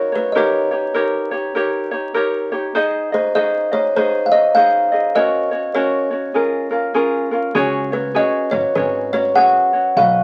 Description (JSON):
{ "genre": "Hawaiian", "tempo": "100 BPM", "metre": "4/4", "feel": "swing 61% on 8ths", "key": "unclear", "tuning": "A4 = 439 Hz", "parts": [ { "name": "kalimba", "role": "melody", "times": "0.0-10.2 s", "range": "B4 to F#5", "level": "-19 LUFS", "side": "equal", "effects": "none" }, { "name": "ukulele", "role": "accompaniment", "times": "0.0-10.2 s", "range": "C#4 to D#5", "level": "-22 LUFS", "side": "equal", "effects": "none" }, { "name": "upright bass", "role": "bass", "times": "7.5-10.2 s", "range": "G#1 to C#2", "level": "-30 LUFS", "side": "equal", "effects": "none" } ], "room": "wet studio reverb, RT60 0.5 s", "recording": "very old 78 rpm record, vinyl crackle", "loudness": "-18 LUFS", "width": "mono", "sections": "0.0-10.2 A section", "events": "none", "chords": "0.4 D#7; 2.8 G#; 5.2 F#/C#; 6.4 C#6; 7.6 C#sus4" }